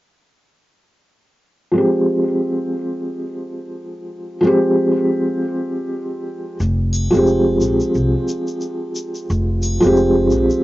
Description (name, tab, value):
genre	trip hop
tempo	89 BPM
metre	4/4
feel	swing 58% on 16ths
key	F minor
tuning	A4 = 441 Hz
part	felt-muted upright piano	accompaniment	1.7-10.6 s	F3 to G4	-16 LUFS	equal	tremolo, vintage 12-bit sampler grit, low-pass filter, tape echo
part	upright bass	bass	6.6-10.5 s	F1 to C2	-19 LUFS	equal	none
part	egg shaker and triangle	percussion	6.6-10.6 s	none	-31 LUFS	left 2 dB	none
room	moderate booth ambience, RT60 0.2 s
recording	home recording on cassette, nothing above 7.6 kHz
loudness	-16 LUFS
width	side -17 dB against mid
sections	1.2-6.6 A section; 6.6-10.6 B section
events	none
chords	1.2 Fmadd9